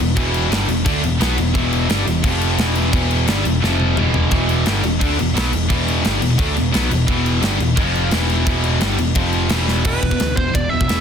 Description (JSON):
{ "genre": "heavy metal", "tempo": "174 BPM", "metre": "4/4", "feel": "straight", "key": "E minor", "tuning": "A4 = 439 Hz", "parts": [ { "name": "distorted electric guitar", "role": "riff", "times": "0.0-9.8 s", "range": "E2 to D4", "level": "-24 LUFS", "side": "left 1 dB", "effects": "distortion" }, { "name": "heavy high-gain guitar", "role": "riff", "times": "0.0-11.0 s", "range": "E2 to D4", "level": "-23 LUFS", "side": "right 11 dB", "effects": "distortion" }, { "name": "high-gain distorted guitar", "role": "riff", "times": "0.0-11.0 s", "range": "E2 to D4", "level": "-23 LUFS", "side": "left 12 dB", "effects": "distortion" }, { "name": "overdriven picked electric bass", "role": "bass", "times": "0.0-11.0 s", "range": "E1 to D2", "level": "-21 LUFS", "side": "equal", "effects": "none" }, { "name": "tight metal drum kit", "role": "drums", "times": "0.0-11.0 s", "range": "crash cymbal, kick drum, ride cymbal, snare drum, toms", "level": "-21 LUFS", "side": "equal", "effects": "none" }, { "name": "high-gain lead guitar", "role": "melody", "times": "9.9-11.0 s", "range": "B4 to E5", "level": "-22 LUFS", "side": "right 2 dB", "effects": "distortion" } ], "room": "studio ambience", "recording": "dense, heavily limited modern master", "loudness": "-15 LUFS", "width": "side -7 dB against mid", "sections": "0.0-9.8 A section; 9.8-11.0 B section", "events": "drum fill 3.6-4.3, 9.7", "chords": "0.0 Em; 2.2 F5; 2.6 Em; 3.6 F5; 4.0 Em; 7.8 F5; 8.1 Em; 9.2 F5; 9.5 E5", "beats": "| 0.16 0.51 0.85 1.20 | 1.54 1.89 2.23 2.58 | 2.93 3.27 3.62 3.96 | 4.31 4.66 5.00 5.35 | 5.69 6.04 6.38 6.73 | 7.08 7.42 7.77 8.11 | 8.46 8.80 9.15 9.50 | 9.84 10.19 10.54 10.88" }